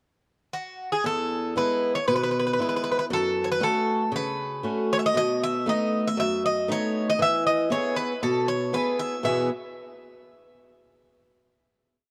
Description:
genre	greek folk, Greek bouzouki band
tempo	117 BPM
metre	4/4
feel	straight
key	E major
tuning	A4 = 440 Hz
part	Greek bouzouki	melody	0.5-9.5 s	F#4 to E5	-28 LUFS	equal	none
part	picked swing-style acoustic guitar	accompaniment	1.0-9.5 s	E2 to B4	-29 LUFS	equal	none
room	moderate plate reverb, RT60 3.1 s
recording	dark, warm production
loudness	-25 LUFS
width	mono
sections	0.0-1.0 pickup bar; 1.0-9.2 A section; 9.2-11.3 final chord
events	none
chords	0.0 N.C.; 1.0 E; 3.1 F#m; 5.1 B7; 7.2 E

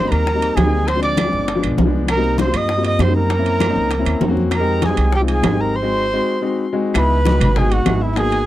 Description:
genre	Afro-Cuban jazz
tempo	197 BPM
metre	4/4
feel	straight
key	unclear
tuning	A4 = 437 Hz
part	breathy trumpet	melody	0.0-8.5 s	E4 to Eb5	-21 LUFS	right 3 dB	none
part	rich erhu	second line	0.0-8.5 s	E5 to Eb6	-28 LUFS	left 4 dB	none
part	warm concert grand piano	accompaniment	0.0-8.4 s	F3 to G4	-21 LUFS	left 4 dB	none
part	upright bass	bass	0.0-8.5 s	G1 to G2	-20 LUFS	right 1 dB	none
part	bongos	percussion	0.1-8.5 s	none	-25 LUFS	left 6 dB	none
part	claves	percussion	0.1-8.0 s	none	-31 LUFS	right 7 dB	none
part	congas	percussion	0.1-8.5 s	none	-24 LUFS	left 1 dB	none
part	timbales	percussion	0.1-8.5 s	none	-26 LUFS	right 8 dB	none
room	light reverb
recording	dry, close 1970s-style studio recording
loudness	-15 LUFS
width	side -14 dB against mid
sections	0.0-7.0 A section; 7.0-8.5 B section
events	break 5.7-7.0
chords	0.0 Abmaj7; 0.9 Dm7b5; 1.5 G7b9; 2.1 Cm7; 3.3 Gb7#11; 4.5 Fm9; 5.7 Ab7; 7.0 C#m7

